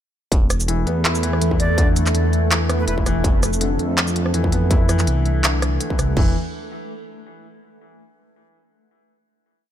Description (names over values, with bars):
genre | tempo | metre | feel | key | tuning
half-time drum and bass | 164 BPM | 4/4 | swing 55% on 16ths, half-time | unclear | A4 = 439 Hz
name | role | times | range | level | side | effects
dark detuned saw bass | bass | 0.3-6.3 s | E1 to F2 | -20 LUFS | equal | none
industrial drum kit | drums | 0.3-6.3 s | crash cymbal, kick drum, toms | -19 LUFS | equal | distortion
industrial drum kit | drums | 0.3-6.1 s | handclaps, hi-hat, rim click, shaker | -22 LUFS | right 1 dB | none
pulsing gated texture | texture | 0.6-6.2 s | A3 to A4 | -27 LUFS | right 1 dB | chorus, built-in reverb
felt-muted upright piano | arpeggios | 0.7-6.3 s | D3 to E4 | -26 LUFS | left 3 dB | tape echo
bright jazz flute | melody | 1.6-2.9 s | B4 to D5 | -30 LUFS | right 1 dB | tape echo
room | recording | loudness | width
little or no reverb | none | -16 LUFS | side -10 dB against mid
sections
0.3-6.2 drop; 6.2-7.6 final note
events
drop 0.3-6.2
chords
0.3 E5; 3.2 F; 6.2 N.C.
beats
| 0.32 0.68 1.05 1.41 | 1.78 2.15 2.51 2.88 | 3.24 3.61 3.97 4.34 | 4.71 5.07 5.44 5.80 | 6.17